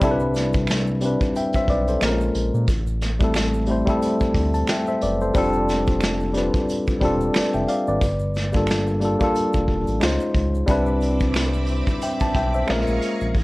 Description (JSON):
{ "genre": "R&B, neo-soul", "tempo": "90 BPM", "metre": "4/4", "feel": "swing 57% on 16ths", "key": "C major", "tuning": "A4 = 440 Hz", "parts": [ { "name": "tine electric piano", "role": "accompaniment", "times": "0.0-13.4 s", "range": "G3 to A5", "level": "-21 LUFS", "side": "left 1 dB", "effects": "none" }, { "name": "smooth synth bass", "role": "bass", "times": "0.0-13.4 s", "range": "E1 to Bb2", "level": "-24 LUFS", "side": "equal", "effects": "tube saturation" }, { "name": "vintage brush drum kit", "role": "drums", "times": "0.0-13.4 s", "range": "hi-hat, kick drum, snare drum", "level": "-24 LUFS", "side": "equal", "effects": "none" }, { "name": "egg shaker and finger snaps", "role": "percussion", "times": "0.0-13.4 s", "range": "none", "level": "-34 LUFS", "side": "right 4 dB", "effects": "none" }, { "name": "string machine, full ensemble", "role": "sustained chords", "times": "10.7-13.4 s", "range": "C4 to D6", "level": "-30 LUFS", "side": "right 2 dB", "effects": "ensemble chorus" } ], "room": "light reverb", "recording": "worn, warbling old tape, cassette tape, warbly pitch drift", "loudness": "-19 LUFS", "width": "side -21 dB against mid", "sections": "0.0-13.4 A section", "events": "none", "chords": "0.0 Cmaj9; 2.0 Bbm7; 2.7 Am7; 5.3 F69; 8.0 Gm9; 10.0 Dbmaj9; 10.7 Cmaj9; 12.7 Bbm7", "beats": "| 0.01 0.68 1.34 2.01 | 2.68 3.34 4.01 4.68 | 5.34 6.01 6.68 7.34 | 8.01 8.68 9.34 10.01 | 10.68 11.34 12.01 12.68 | 13.34" }